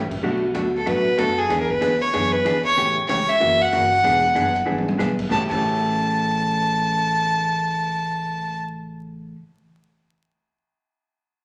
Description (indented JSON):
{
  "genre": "country, western swing",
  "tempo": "189 BPM",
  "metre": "4/4",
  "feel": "swing 63% on 8ths",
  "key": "A mixolydian",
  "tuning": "A4 = 440 Hz",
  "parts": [
    { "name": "vintage hollow-body jazz guitar", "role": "accompaniment", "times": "0.0-9.4 s", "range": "A2 to G#4", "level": "-27 LUFS", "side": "equal", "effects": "none" },
    { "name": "upright bass", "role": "bass", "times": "0.0-9.3 s", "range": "E1 to A2", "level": "-36 LUFS", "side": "equal", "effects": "none" },
    { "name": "swinging big-band drum kit", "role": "drums", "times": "0.1-5.6 s", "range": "crash cymbal, hi-hat, kick drum, ride cymbal, snare drum, toms", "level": "-35 LUFS", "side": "equal", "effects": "none" },
    { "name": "clear fiddle", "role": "melody", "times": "0.8-8.6 s", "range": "G#4 to A5", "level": "-22 LUFS", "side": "equal", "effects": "none" }
  ],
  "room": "wet large studio reverb, RT60 1.2 s",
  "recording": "vinyl crackle",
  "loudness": "-21 LUFS",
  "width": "mono",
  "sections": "0.0-5.3 A section; 5.3-7.8 B section",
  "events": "drum fill 4.7-5.0",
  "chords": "0.2 Bm7; 1.5 E9; 2.8 A7; 3.4 F#7b9; 4.0 E9; 5.3 A7"
}